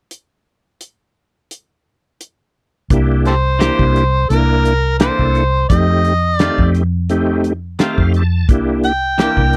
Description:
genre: straight-eighth soul blues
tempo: 86 BPM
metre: 4/4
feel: swing 54% on 16ths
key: C mixolydian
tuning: A4 = 439 Hz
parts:
  - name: damped 70s drum kit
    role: drums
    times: 0.1-9.6 s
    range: hi-hat, kick drum, snare drum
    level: -18 LUFS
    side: equal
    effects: none
  - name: bright tonewheel organ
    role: accompaniment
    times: 2.9-9.6 s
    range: A3 to A5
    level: -20 LUFS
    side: equal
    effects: slow rotary speaker, chorus vibrato
  - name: vintage muted fingered electric bass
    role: bass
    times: 2.9-9.6 s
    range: C2 to F2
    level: -18 LUFS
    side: equal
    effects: none
  - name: overdriven harmonica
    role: melody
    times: 3.3-9.6 s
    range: G4 to G5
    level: -20 LUFS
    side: equal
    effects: none
  - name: twangy electric guitar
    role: stabs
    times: 3.6-9.4 s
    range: Eb3 to G4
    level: -24 LUFS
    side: equal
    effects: warbly pitch drift
room: little or no reverb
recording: dry, close 1970s-style studio recording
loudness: -15 LUFS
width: mono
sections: 0.1-2.9 A section; 2.9-9.6 B section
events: tonewheel organ fill 7.4-8.5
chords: 0.1 N.C.; 2.9 C7; 5.7 F7; 8.5 C7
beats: | 0.12 0.81 1.51 2.21 | 2.91 3.61 4.31 5.01 | 5.70 6.40 7.10 7.80 | 8.49 9.19

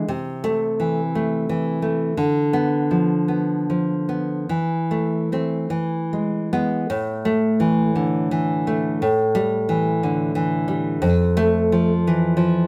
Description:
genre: romantic piece for solo classical guitar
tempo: 48-60 BPM (dotted quarters)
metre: 6/8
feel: rubato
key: A minor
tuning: A4 = 440 Hz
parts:
  - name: nylon-string guitar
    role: solo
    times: 0.0-12.7 s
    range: F2 to C4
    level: -21 LUFS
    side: equal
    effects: none
room: moderate stone room reverb, RT60 1.1 s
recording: band playing live in one room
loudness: -21 LUFS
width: mono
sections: 0.0-6.9 A section; 6.9-12.7 B section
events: none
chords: 0.1 Am/C; 2.2 Bdim/D; 4.5 Am/E; 5.7 E; 6.9 A5; 9.0 Em/A; 11.0 Fmaj7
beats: | 0.09 1.14 | 2.16 3.28 | 4.49 5.71 | 6.90 7.96 | 9.01 10.03 | 11.04 12.05

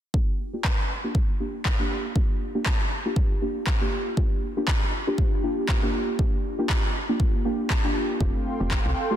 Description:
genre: afro house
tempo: 119 BPM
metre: 4/4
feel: swing 56% on 16ths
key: G minor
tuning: A4 = 440 Hz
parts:
  - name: deep mellow chord stab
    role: stabs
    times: 0.1-9.2 s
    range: A3 to G4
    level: -28 LUFS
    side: equal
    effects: chorus, sidechain pumping, dub echo
  - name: electronic kick drum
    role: drums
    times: 0.1-8.8 s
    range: none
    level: -24 LUFS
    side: equal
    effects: none
  - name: electronic handclaps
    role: drums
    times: 0.6-8.8 s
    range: none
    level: -31 LUFS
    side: equal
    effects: overdrive
  - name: warm analog pad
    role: sustained chords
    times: 8.2-9.2 s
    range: A4 to C6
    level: -29 LUFS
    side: right 1 dB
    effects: chorus, sidechain pumping
  - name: woody FM bass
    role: bass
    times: 8.2-8.9 s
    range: F1 to C2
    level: -27 LUFS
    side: equal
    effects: sidechain pumping
room: light reverb, digital ambience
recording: dense, heavily limited modern master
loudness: -22 LUFS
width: side -10 dB against mid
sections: 0.1-9.2 A section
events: filter sweep on synth stab 0.1-9.2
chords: 0.1 Gm7; 8.2 Fadd9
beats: | 0.14 0.65 1.15 1.65 | 2.16 2.66 3.17 3.67 | 4.17 4.68 5.18 5.69 | 6.19 6.70 7.20 7.70 | 8.21 8.71

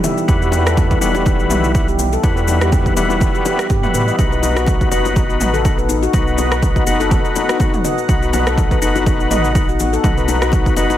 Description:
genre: afro house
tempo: 123 BPM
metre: 4/4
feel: swing 56% on 16ths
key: E harmonic minor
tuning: A4 = 439 Hz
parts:
  - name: warm analog pad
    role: sustained chords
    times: 0.0-11.0 s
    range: E3 to F#5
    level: -24 LUFS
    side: left 1 dB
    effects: chorus, sidechain pumping
  - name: handpan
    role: arpeggios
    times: 0.0-11.0 s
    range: D#4 to E5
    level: -20 LUFS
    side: left 2 dB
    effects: sidechain pumping, ping-pong delay
  - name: deep house drum kit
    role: drums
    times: 0.0-11.0 s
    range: cabasa, rim click, toms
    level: -25 LUFS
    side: equal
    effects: overdrive, studio reverb
  - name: bongos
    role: percussion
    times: 0.0-11.0 s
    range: none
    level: -27 LUFS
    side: left 5 dB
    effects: none
  - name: overdriven tonewheel organ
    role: stabs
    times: 0.3-11.0 s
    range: G3 to B4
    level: -21 LUFS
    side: left 4 dB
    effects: chorus vibrato, sidechain pumping, low-pass filter, ping-pong delay
  - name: warm sub bass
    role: bass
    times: 0.3-11.0 s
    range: E1 to A2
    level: -20 LUFS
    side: right 1 dB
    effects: sidechain pumping
  - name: electronic kick drum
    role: drums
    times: 0.3-10.8 s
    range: none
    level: -17 LUFS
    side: right 1 dB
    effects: overdrive, studio reverb
room: little or no reverb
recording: none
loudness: -13 LUFS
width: side -12 dB against mid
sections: 0.0-11.0 A section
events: none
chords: 0.0 Emadd9; 4.2 B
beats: | 0.28 0.77 1.26 1.75 | 2.23 2.72 3.21 3.70 | 4.19 4.67 5.16 5.65 | 6.14 6.63 7.11 7.60 | 8.09 8.58 9.06 9.55 | 10.04 10.53

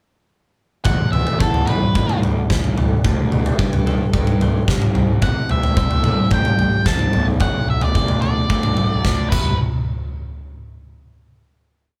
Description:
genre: quiet-loud alternative rock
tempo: 110 BPM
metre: 4/4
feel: straight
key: E minor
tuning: A4 = 440 Hz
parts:
  - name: octave-fuzz lead guitar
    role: melody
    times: 0.8-9.6 s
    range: A4 to A5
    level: -26 LUFS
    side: equal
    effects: distortion
  - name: huge arena drum kit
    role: drums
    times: 0.8-9.5 s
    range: crash cymbal, kick drum, snare drum, toms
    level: -20 LUFS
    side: equal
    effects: none
  - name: twelve-string electric guitar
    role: arpeggios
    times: 0.9-9.5 s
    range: B2 to A4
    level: -31 LUFS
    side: equal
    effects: none
  - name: fuzz picked electric bass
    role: bass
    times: 0.9-9.6 s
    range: E1 to G2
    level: -27 LUFS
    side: equal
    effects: overdrive
room: light reverb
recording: band playing live in one room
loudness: -18 LUFS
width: mono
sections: 0.9-9.6 verse; 9.6-11.8 final hit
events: drum fill 9.3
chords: 0.9 Em; 3.0 D7sus4; 5.0 C; 7.1 Bm7; 9.3 Em; 9.6 N.C.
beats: | 0.86 1.41 1.95 2.50 | 3.04 3.59 4.14 4.68 | 5.23 5.77 6.32 6.87 | 7.41 7.96 8.50 9.05

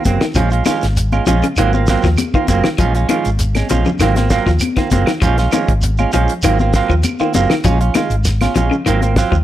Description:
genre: afrobeat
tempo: 99 BPM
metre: 4/4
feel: straight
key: Bb minor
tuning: A4 = 441 Hz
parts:
  - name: electric guitar through a small old amp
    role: arpeggios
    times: 0.0-9.4 s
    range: Db3 to F3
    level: -21 LUFS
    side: left 6 dB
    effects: none
  - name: semi-hollow electric guitar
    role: stabs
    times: 0.0-9.4 s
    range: F3 to F4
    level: -18 LUFS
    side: right 6 dB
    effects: none
  - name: fingered electric bass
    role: bass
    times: 0.1-9.4 s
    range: Gb1 to Eb2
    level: -16 LUFS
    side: equal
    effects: none
  - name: damped 70s drum kit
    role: drums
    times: 0.1-9.4 s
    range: hi-hat, kick drum, snare drum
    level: -20 LUFS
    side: equal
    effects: none
  - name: congas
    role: percussion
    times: 0.1-9.2 s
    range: none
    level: -22 LUFS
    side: left 4 dB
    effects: none
  - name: shekere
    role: percussion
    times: 0.1-9.4 s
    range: none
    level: -24 LUFS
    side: right 1 dB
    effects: none
  - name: claves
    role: percussion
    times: 0.2-9.0 s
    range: none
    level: -29 LUFS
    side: right 6 dB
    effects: none
room: studio reverb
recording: none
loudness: -12 LUFS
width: side -12 dB against mid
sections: 0.0-9.4 A section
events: none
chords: 0.4 Bbm7; 1.6 Ab13; 2.8 Bbm7; 4.0 Ab13; 5.2 Bbm7; 6.4 Ab13; 7.7 Bbm7; 8.9 Ab13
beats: | 0.36 0.97 1.58 2.19 | 2.79 3.40 4.01 4.62 | 5.22 5.83 6.44 7.04 | 7.65 8.26 8.87

